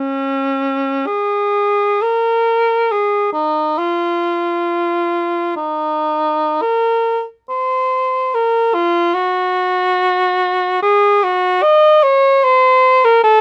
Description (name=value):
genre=classical, free, expressive piece for unaccompanied cor anglais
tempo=48-75 BPM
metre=3/4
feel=rubato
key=unclear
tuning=A4 = 435 Hz
part: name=mellow cor anglais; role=solo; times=0.0-13.4 s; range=Db4 to Eb5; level=-15 LUFS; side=equal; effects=none
room=light reverb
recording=none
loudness=-15 LUFS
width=mono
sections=0.0-13.4 A section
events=none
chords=none